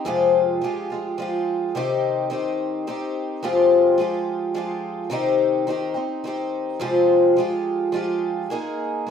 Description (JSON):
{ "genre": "rock", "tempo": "106 BPM", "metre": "3/4", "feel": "straight", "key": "unclear", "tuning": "A4 = 442 Hz", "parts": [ { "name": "picked twelve-string acoustic guitar", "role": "solo", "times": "0.0-9.1 s", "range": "F2 to Ab4", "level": "-20 LUFS", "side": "left 2 dB", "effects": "slapback echo" } ], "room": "moderate small room reverb, RT60 0.5 s", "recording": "rough home demo mix", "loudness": "-20 LUFS", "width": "side -7 dB against mid", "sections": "0.0-8.5 A section", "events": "none", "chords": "0.0 Fmadd9; 1.7 Cm; 3.4 Fmadd9; 5.1 Cm; 6.8 Fmadd9; 8.5 Absus2" }